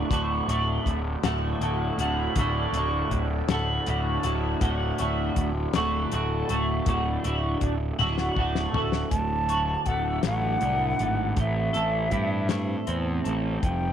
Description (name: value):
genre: psychedelic rock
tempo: 53 BPM (dotted quarters)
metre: 6/8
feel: straight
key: D mixolydian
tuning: A4 = 440 Hz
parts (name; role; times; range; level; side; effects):
- ensemble organ-string; sustained chords; 0.0-13.9 s; E3 to E5; -37 LUFS; right 11 dB; ensemble chorus
- twelve-string electric guitar; riff; 0.0-13.9 s; D2 to A4; -28 LUFS; equal; flanger, double-tracked left and right
- fuzz picked electric bass; bass; 0.0-13.9 s; D1 to G2; -28 LUFS; equal; overdrive
- overtone-sweeping drone; drone; 0.0-9.2 s; D2 to A2; -35 LUFS; equal; chorus, built-in reverb
- damped 70s drum kit; drums; 0.1-13.8 s; hi-hat, kick drum, snare drum, toms; -29 LUFS; left 3 dB; none
- mellow hollow silver concert flute; melody; 9.1-13.9 s; E5 to A5; -28 LUFS; equal; tape echo
room: light reverb, small room ambience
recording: 1960s-style stereo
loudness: -24 LUFS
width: side -9 dB against mid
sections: 0.0-9.1 A section; 9.1-13.9 B section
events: drum fill 8.0-9.1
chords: 0.0 D; 11.4 Am